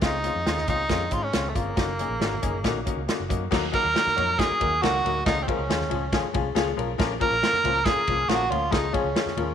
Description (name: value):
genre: uptempo 1960s-style soul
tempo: 138 BPM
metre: 4/4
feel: straight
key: unclear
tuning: A4 = 439 Hz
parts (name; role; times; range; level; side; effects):
- clear upright piano; accompaniment; 0.0-9.5 s; F3 to Db5; -28 LUFS; left 9 dB; none
- vintage muted fingered electric bass; bass; 0.0-9.5 s; Gb1 to Ab2; -32 LUFS; right 1 dB; none
- warm soul drum kit; drums; 0.0-9.5 s; crash cymbal, hi-hat, kick drum, ride cymbal, snare drum; -28 LUFS; right 2 dB; none
- congas; percussion; 0.0-9.5 s; none; -40 LUFS; right 10 dB; none
- bright tenor saxophone; melody; 0.1-9.5 s; A3 to Bb4; -25 LUFS; right 1 dB; tape echo
- vibraphone with soft mallets; second line; 3.7-9.5 s; C5 to Bb5; -34 LUFS; right 11 dB; none
room: moderate echo chamber reverb, RT60 1.8 s, studio ambience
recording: 1960s-style stereo with parts hard left and right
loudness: -22 LUFS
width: side -8 dB against mid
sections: 0.0-3.5 A section; 3.5-9.5 B section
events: none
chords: 0.0 Dbmaj7; 1.8 Gb6; 3.5 Ebm; 5.3 Db; 7.0 Bbm; 8.7 Db